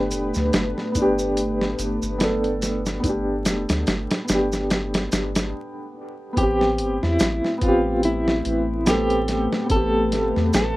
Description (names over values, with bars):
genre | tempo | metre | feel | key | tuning
trip hop | 72 BPM | 4/4 | swing 57% on 16ths | A minor | A4 = 445 Hz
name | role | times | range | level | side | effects
felt-muted upright piano | accompaniment | 0.0-10.8 s | B3 to A4 | -24 LUFS | equal | tremolo, vintage 12-bit sampler grit, tape echo
dark analog pad | sustained chords | 0.0-10.8 s | A3 to B4 | -28 LUFS | left 1 dB | chorus
soft dub sub bass | bass | 0.0-10.7 s | F1 to E2 | -27 LUFS | equal | none
dusty soul sampler-style drum kit | drums | 0.1-10.8 s | hi-hat, kick drum, snare drum | -24 LUFS | equal | none
maracas | percussion | 0.1-10.7 s | none | -33 LUFS | right 2 dB | none
electric guitar at the edge of break-up | melody | 6.4-10.8 s | E4 to A4 | -23 LUFS | equal | tremolo, dub echo
room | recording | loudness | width
light reverb | rough home demo mix, vinyl crackle | -19 LUFS | side -18 dB against mid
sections
0.0-6.4 A section; 6.4-10.8 B section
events
stop 5.5-6.4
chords
0.0 G; 6.4 Am7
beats
0.54 1.37 2.20 | 3.04 3.87 4.70 5.54 | 6.37 7.20 8.04 8.87 | 9.70 10.54